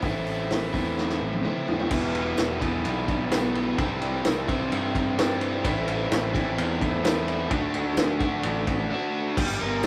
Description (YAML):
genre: psychedelic rock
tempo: 129 BPM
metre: 4/4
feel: straight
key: unclear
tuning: A4 = 440 Hz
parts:
  - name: overdriven electric guitar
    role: riff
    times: 0.0-9.9 s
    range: E2 to Bb4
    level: -30 LUFS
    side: equal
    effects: none
  - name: fuzz fingered electric bass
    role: bass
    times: 0.0-9.9 s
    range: E1 to G2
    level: -33 LUFS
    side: equal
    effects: overdrive
  - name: vintage drum kit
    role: drums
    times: 0.0-9.9 s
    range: crash cymbal, hi-hat, kick drum, ride cymbal, snare drum, toms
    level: -30 LUFS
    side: equal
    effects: none
  - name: overdriven combo organ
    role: sustained chords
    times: 1.9-9.3 s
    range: F#4 to C6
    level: -44 LUFS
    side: equal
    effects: none
  - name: tambourine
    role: percussion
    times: 2.4-9.9 s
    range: none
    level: -49 LUFS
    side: equal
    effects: none
room: moderate studio reverb, RT60 0.5 s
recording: rough rehearsal-room recording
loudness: -26 LUFS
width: mono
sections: 0.0-1.9 A section; 1.9-9.4 B section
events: drum fill 1.0-1.9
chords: 0.0 Am; 1.9 Em; 3.8 C; 5.7 Am7; 7.5 D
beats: | 0.03 0.50 0.97 1.44 | 1.91 2.38 2.85 3.32 | 3.78 4.25 4.72 5.18 | 5.65 6.12 6.58 7.05 | 7.51 7.98 8.45 8.91 | 9.38 9.84